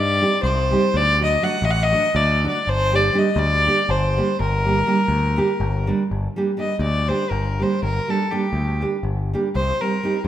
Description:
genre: balkan folk, Balkan wedding band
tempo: 244 BPM (eighths)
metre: 7/8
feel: straight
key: G harmonic minor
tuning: A4 = 442 Hz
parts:
  - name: rich fiddle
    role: melody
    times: 0.0-10.2 s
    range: G4 to F#5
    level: -21 LUFS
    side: left 1 dB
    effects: none
  - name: growling picked electric bass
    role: bass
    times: 0.0-10.3 s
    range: G1 to G2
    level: -22 LUFS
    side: left 1 dB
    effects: overdrive
  - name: nylon-string guitar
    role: accompaniment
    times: 0.2-10.2 s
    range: F#3 to G4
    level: -23 LUFS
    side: right 3 dB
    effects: none
room: moderate scoring stage reverb, RT60 1.9 s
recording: minimal, uncompressed stereo recording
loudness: -18 LUFS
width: side -11 dB against mid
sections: 0.0-6.1 A section; 6.1-10.3 B section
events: fiddle solo 6.1-10.3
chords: 0.0 Cm; 0.9 D; 2.7 Gm; 9.6 Cm

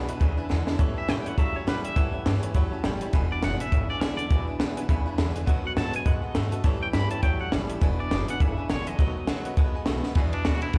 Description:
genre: rockabilly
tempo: 205 BPM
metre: 4/4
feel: swing 59% on 8ths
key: E mixolydian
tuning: A4 = 440 Hz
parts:
  - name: picked steel-string acoustic guitar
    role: accompaniment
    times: 0.0-10.8 s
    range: E2 to F#4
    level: -38 LUFS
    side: equal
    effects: slapback echo
  - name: direct-recorded clean electric guitar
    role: riff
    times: 0.0-10.8 s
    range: E2 to A3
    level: -37 LUFS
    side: equal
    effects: slapback echo
  - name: upright bass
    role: bass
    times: 0.0-10.8 s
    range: E1 to C#3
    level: -32 LUFS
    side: equal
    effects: none
  - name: honky-tonk upright piano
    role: accompaniment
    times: 0.1-10.8 s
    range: B4 to B5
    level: -42 LUFS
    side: equal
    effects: slapback echo
  - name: compact cocktail drum kit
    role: drums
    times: 0.1-10.8 s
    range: hi-hat, kick drum, ride cymbal, snare drum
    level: -28 LUFS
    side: equal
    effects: none
  - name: twangy electric guitar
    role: melody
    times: 1.0-10.8 s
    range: D4 to B5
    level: -35 LUFS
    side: equal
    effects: tremolo, tape echo
room: studio ambience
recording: live gig heard through the venue's PA, club reverb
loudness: -26 LUFS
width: mono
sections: 0.0-10.2 A section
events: drum fill 0.5, 10.0; honky-tonk piano fill 2.6-3.1, 4.9-5.5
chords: 0.0 E7; 0.8 A7; 3.1 E7; 5.5 B7; 6.7 A7; 7.8 E7; 9.0 B7; 10.2 E7

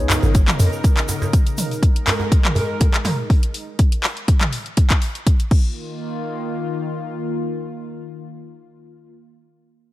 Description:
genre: afro house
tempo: 122 BPM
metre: 4/4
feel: swing 53% on 16ths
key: unclear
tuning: A4 = 440 Hz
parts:
  - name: bass bansuri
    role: melody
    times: 0.0-0.6 s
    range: Db5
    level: -35 LUFS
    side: left 1 dB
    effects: none
  - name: warm analog pad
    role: sustained chords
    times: 0.0-9.1 s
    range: Db3 to Bb4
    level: -27 LUFS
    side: left 1 dB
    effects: chorus, sidechain pumping
  - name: warm 808-style bass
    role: bass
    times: 0.0-0.7 s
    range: Ab1 to F2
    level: -18 LUFS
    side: equal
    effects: tube saturation, sidechain pumping
  - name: house drum kit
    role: drums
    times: 0.1-5.6 s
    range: crash cymbal, handclaps, hi-hat, toms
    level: -23 LUFS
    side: equal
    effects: overdrive
  - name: djembe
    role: percussion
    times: 0.1-3.2 s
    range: none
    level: -24 LUFS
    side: right 1 dB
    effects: none
  - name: tube shaker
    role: percussion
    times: 0.1-1.8 s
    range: none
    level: -32 LUFS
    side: right 3 dB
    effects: none
  - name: electronic kick drum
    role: drums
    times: 0.3-5.6 s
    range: none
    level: -15 LUFS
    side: equal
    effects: overdrive
room: small room ambience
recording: none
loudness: -17 LUFS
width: side -16 dB against mid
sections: 0.0-5.8 A section; 5.8-9.7 B section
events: drop 0.0-5.8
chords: 0.0 Db5; 1.8 Absus2; 5.5 Ebsus2

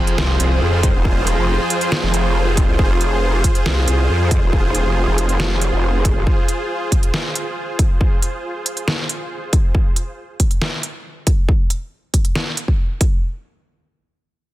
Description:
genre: heavy wobble dubstep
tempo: 138 BPM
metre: 4/4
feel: half-time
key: F minor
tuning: A4 = 440 Hz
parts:
  - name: supersaw pad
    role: sustained chords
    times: 0.0-9.7 s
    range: F4 to C5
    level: -22 LUFS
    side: right 1 dB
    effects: sidechain pumping
  - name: thick fuzz guitar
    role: stabs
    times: 0.0-2.6 s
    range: F3 to F4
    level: -25 LUFS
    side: equal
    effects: distortion, low-pass filter, dub echo
  - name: sub drop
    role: sound effects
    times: 0.0-1.1 s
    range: none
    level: -31 LUFS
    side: equal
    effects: none
  - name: dubstep drum kit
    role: drums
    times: 0.1-13.1 s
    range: hi-hat, snare drum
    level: -22 LUFS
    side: equal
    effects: none
  - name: growl bass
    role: bass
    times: 0.2-6.2 s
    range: Eb1 to F2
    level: -18 LUFS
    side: equal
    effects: chorus, overdrive
  - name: electronic kick drum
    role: drums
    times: 0.8-13.1 s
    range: none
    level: -16 LUFS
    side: equal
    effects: none
room: digital ambience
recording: dense, heavily limited modern master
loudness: -16 LUFS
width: side -15 dB against mid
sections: 0.0-13.2 A section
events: impact 0.0-1.1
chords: 0.0 Fm

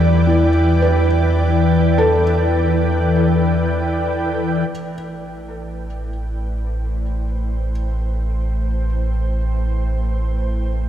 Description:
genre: ambient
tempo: free time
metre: none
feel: none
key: A minor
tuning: A4 = 441 Hz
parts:
  - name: ethereal airy pad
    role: sustained chords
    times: 0.0-10.9 s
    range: E3 to G5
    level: -20 LUFS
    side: left 1 dB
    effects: ensemble chorus, built-in reverb
  - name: felt-muted upright piano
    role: arpeggios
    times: 0.0-7.7 s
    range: E3 to D5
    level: -21 LUFS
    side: equal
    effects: tape echo
  - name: warm sub bass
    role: bass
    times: 0.0-10.9 s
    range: A1 to E2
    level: -19 LUFS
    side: right 1 dB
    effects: tube saturation
room: wet cathedral reverb, RT60 5.0 s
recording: none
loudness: -16 LUFS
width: side -10 dB against mid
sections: 0.0-4.7 A section; 4.7-10.9 A section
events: none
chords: 0.0 Em7; 4.7 Am9

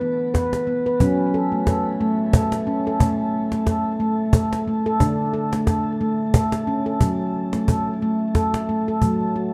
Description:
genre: world meditative, meditative tuned percussion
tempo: 90 BPM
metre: 3/4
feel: swing 56% on 16ths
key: F# minor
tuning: A4 = 440 Hz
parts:
  - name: handpan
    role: arpeggios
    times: 0.0-9.5 s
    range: D3 to B4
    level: -23 LUFS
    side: equal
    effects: delay, shimmer reverb
  - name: cajon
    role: percussion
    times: 0.0-9.4 s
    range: none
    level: -23 LUFS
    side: equal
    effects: none
room: wet echo chamber reverb, RT60 2.2 s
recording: dark, warm production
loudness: -21 LUFS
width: mono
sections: 0.0-9.0 A section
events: none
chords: 0.0 E5; 1.0 F#m; 3.0 N.C.; 5.0 D5; 7.0 F#m

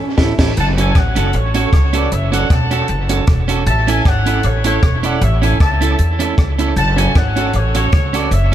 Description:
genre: ska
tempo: 155 BPM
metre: 4/4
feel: swing 54% on 8ths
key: F# minor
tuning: A4 = 440 Hz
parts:
  - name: electric guitar at the edge of break-up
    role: accompaniment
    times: 0.2-8.5 s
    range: C#4 to A4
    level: -20 LUFS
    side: right 6 dB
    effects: dub echo
  - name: upright bass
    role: bass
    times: 0.2-8.5 s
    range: E1 to E2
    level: -16 LUFS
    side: equal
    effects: none
  - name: compact cocktail drum kit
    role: drums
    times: 0.2-8.4 s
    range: crash cymbal, hi-hat, kick drum, rim click, snare drum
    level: -16 LUFS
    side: equal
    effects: dub echo
  - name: warm horn section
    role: melody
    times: 0.6-8.5 s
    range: A4 to A5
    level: -20 LUFS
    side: left 1 dB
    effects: dub echo, plate reverb
room: light reverb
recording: none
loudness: -12 LUFS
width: side -11 dB against mid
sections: 0.6-8.5 A section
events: band accent 0.0-0.6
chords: 0.0 A; 0.6 F#m; 3.7 A; 6.8 F#m

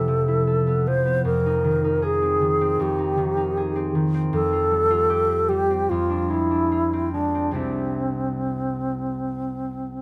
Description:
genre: classical, impressionist duo for alto flute and harp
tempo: 68-80 BPM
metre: 4/4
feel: rubato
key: unclear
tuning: A4 = 439 Hz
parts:
  - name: alto flute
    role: melody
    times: 0.0-10.0 s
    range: C4 to C5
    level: -24 LUFS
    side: equal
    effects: none
  - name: concert harp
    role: accompaniment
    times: 0.0-10.0 s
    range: C2 to A4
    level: -27 LUFS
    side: equal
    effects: none
room: light reverb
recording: none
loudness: -22 LUFS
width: mono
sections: 0.0-10.0 A section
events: none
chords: 0.0 Fmaj7#11; 1.3 Abmaj7/F; 4.3 Fadd9; 5.9 Fm6; 7.5 Cadd9

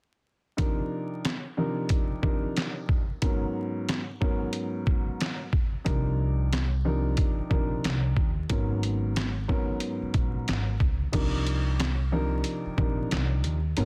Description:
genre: hip hop, boom-bap hip-hop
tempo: 91 BPM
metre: 4/4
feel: swing 60% on 16ths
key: C minor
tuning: A4 = 439 Hz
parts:
  - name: dark upright piano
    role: accompaniment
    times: 0.6-13.8 s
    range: Ab2 to Bb4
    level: -34 LUFS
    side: equal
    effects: cassette tape, high-pass filter, low-pass filter
  - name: trip hop sampler-style drum kit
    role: drums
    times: 0.6-13.8 s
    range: crash cymbal, handclaps, hi-hat, kick drum, snare drum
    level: -30 LUFS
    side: equal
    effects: none
  - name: upright bass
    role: bass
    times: 5.9-13.8 s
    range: Ab1 to Eb2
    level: -30 LUFS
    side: equal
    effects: none
room: small room ambience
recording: dense, heavily limited modern master, vinyl crackle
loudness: -28 LUFS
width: mono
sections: 0.6-11.1 A section; 11.1-13.8 B section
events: none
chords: 0.6 Cm11; 3.2 Abm11; 5.9 Cm11; 8.5 Abm11; 11.1 Cm11

